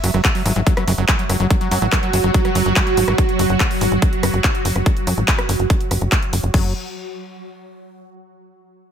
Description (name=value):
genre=psychedelic trance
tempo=143 BPM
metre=4/4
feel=straight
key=unclear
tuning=A4 = 441 Hz
part: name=swarming drone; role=sustained chords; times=0.0-6.5 s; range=F#3 to F#4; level=-22 LUFS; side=right 3 dB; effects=built-in reverb, phaser, sidechain pumping
part: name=overdriven acid bass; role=riff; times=0.0-3.1, 6.5-6.7 s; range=F#3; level=-24 LUFS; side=moving between left 4 dB and right 7 dB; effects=auto-pan, sidechain pumping, dub echo
part: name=tight sequencer bass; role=bass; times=0.0-6.7 s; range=F#1 to F#2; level=-19 LUFS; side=equal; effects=none
part: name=big-room dance drum kit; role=drums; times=0.0-6.6 s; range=crash cymbal, handclaps, hi-hat, rim click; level=-23 LUFS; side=left 1 dB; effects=overdrive, studio ambience
part: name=electronic kick drum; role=drums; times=0.2-6.6 s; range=none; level=-18 LUFS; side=equal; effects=overdrive, studio ambience
room=little or no reverb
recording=none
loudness=-15 LUFS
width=side -8 dB against mid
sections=0.0-6.5 A section; 6.5-8.2 B section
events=filter sweep on analog synth bass 0.0-6.5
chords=0.0 F#sus2; 6.5 N.C.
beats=0.25 0.67 1.08 | 1.50 1.92 2.34 2.76 | 3.18 3.60 4.02 4.44 | 4.86 5.28 5.70 6.12 | 6.54